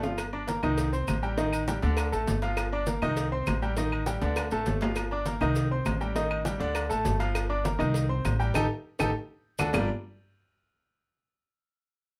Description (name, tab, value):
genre	latin, salsa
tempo	201 BPM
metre	4/4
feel	straight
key	G minor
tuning	A4 = 439 Hz
part	bright baby grand piano	accompaniment	0.0-9.9 s	D3 to D6	-32 LUFS	equal	none
part	upright bass	bass	0.0-9.9 s	G1 to D2	-33 LUFS	equal	none
part	bongos and cowbell	percussion	0.0-9.8 s	none	-40 LUFS	equal	none
part	maracas	percussion	0.0-9.8 s	none	-48 LUFS	equal	none
part	agogo bells and timbales	percussion	0.2-9.8 s	none	-39 LUFS	equal	none
part	claves	percussion	0.2-9.8 s	none	-38 LUFS	equal	none
part	congas	percussion	0.2-9.8 s	none	-38 LUFS	equal	none
room	moderate studio ambience, RT60 0.5 s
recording	band playing live in one room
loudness	-28 LUFS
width	mono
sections	0.2-9.7 A section; 9.7-10.9 B section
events	drum fill 0.0, 4.2-5.0, 9.0-9.7; band accent 8.6-9.7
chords	0.2 Gm; 0.8 Cm; 1.4 Ebmaj7#11/A; 2.0 D5; 2.6 Gm7; 3.2 Cm; 3.8 Ebmaj7#11/A; 4.4 D5; 5.0 Gm7; 5.6 Cm; 6.2 Ebmaj7#11/A; 6.8 D5; 7.4 Gm7; 8.0 Cm; 8.6 Gsus2/A; 9.1 D; 9.7 Gm7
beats	| 0.18 0.48 0.78 1.08 | 1.38 1.68 1.98 2.28 | 2.58 2.88 3.17 3.47 | 3.77 4.07 4.37 4.67 | 4.97 5.27 5.57 5.86 | 6.16 6.46 6.76 7.06 | 7.36 7.66 7.95 8.25 | 8.55 8.85 9.15 9.45 | 9.74